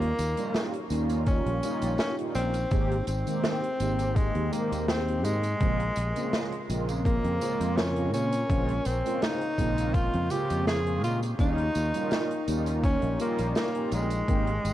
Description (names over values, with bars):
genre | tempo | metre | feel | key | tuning
vaporwave | 83 BPM | 4/4 | straight | unclear | A4 = 441 Hz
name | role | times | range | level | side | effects
clear tenor saxophone | melody | 0.0-14.7 s | Ab3 to Ab4 | -30 LUFS | equal | vintage 12-bit sampler grit, tape echo
mellow synth brass | accompaniment | 0.0-14.5 s | Db3 to G4 | -32 LUFS | right 1 dB | analog chorus, tape echo
warbly tape-like pad | sustained chords | 0.3-14.7 s | Ab3 to Db6 | -41 LUFS | left 1 dB | none
fingered electric bass | bass | 0.0-14.7 s | Ab1 to Bb2 | -29 LUFS | equal | none
open jazz drum kit | drums | 0.0-14.7 s | hi-hat, snare drum, tambourine | -34 LUFS | right 1 dB | none
electronic kick drum | drums | 1.3-14.4 s | none | -27 LUFS | equal | overdrive
room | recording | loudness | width
light reverb, studio ambience | cassette tape | -25 LUFS | side -13 dB against mid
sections
0.0-14.7 A section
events
none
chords
0.0 Eb7; 2.7 Abmaj7; 5.6 Bbm7; 11.4 Eb7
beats
0.55 1.27 2.00 | 2.72 3.44 4.17 4.89 | 5.61 6.33 7.06 7.78 | 8.50 9.22 9.95 10.67 | 11.39 12.12 12.84 13.56 | 14.29